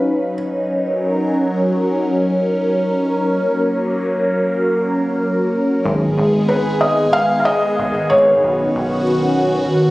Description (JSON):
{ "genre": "IDM", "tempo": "93 BPM", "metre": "4/4", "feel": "swing 62% on 16ths", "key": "G# minor", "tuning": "A4 = 439 Hz", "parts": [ { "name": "felt-muted upright piano", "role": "melody", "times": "0.0-0.3, 6.5-9.0 s", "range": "B4 to E#5", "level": "-16 LUFS", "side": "equal", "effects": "digital delay" }, { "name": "phased analog pad", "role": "sustained chords", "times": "0.0-9.9 s", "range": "D#3 to B4", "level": "-16 LUFS", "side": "equal", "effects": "phaser, chorus" }, { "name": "deep acid bass", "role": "bass", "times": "5.9-9.7 s", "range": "G#1 to B1", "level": "-21 LUFS", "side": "equal", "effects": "none" } ], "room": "moderate huge ambient reverb, RT60 5.0 s", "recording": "recorded on a phone in the room", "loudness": "-15 LUFS", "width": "side -18 dB against mid", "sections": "0.0-5.9 A section; 5.9-9.9 B section", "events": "none", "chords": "0.0 Badd9; 0.7 D#m7; 3.3 F#; 5.9 G#m; 8.4 Badd9" }